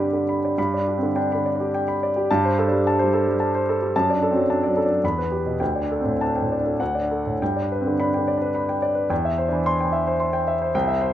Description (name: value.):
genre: classical, romantic character piece for solo piano.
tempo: 95-112 BPM.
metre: 3/4.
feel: rubato.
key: G major.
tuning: A4 = 440 Hz.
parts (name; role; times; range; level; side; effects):
clear concert grand piano; solo; 0.0-11.1 s; C2 to C6; -20 LUFS; equal; none.
room: light reverb.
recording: none.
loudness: -20 LUFS.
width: side -11 dB against mid.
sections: 0.6-11.1 A section.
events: none.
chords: 0.0 G; 2.3 Am7/G; 3.9 D/F#; 5.0 Em; 5.6 Dsus4; 6.8 D; 7.4 G; 9.1 C/E.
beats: | 0.57 1.14 1.73 | 2.29 2.84 3.39 | 3.94 4.48 5.02 | 5.60 6.20 6.80 | 7.40 7.98 8.54 | 9.10 9.66 10.20 | 10.74.